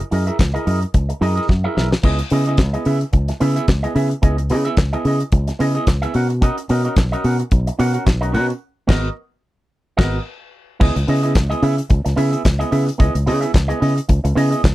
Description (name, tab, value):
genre	disco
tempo	110 BPM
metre	4/4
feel	swing 56% on 16ths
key	C# dorian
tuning	A4 = 442 Hz
part	electric guitar with an envelope filter	accompaniment	0.0-14.7 s	B3 to F#5	-22 LUFS	right 2 dB	none
part	damped 70s drum kit	drums	0.0-14.7 s	crash cymbal, handclaps, hi-hat, kick drum, snare drum	-18 LUFS	equal	none
part	fingered electric bass	bass	0.1-14.7 s	G#1 to C#3	-18 LUFS	equal	none
room	little or no reverb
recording	dry, close 1970s-style studio recording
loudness	-15 LUFS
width	side -16 dB against mid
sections	0.0-2.0 A section; 2.0-10.8 B section; 10.8-14.7 C section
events	drum fill 1.5-2.0; band accent 8.6-10.8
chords	0.0 F#13; 2.0 C#m9; 6.1 Bmaj9; 8.6 G#m9; 10.8 C#m9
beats	0.40 0.94 1.49 | 2.04 2.59 3.13 3.68 | 4.23 4.78 5.33 5.88 | 6.42 6.97 7.52 8.07 | 8.62 9.16 9.71 10.26 | 10.81 11.36 11.90 12.45 | 13.00 13.54 14.09 14.64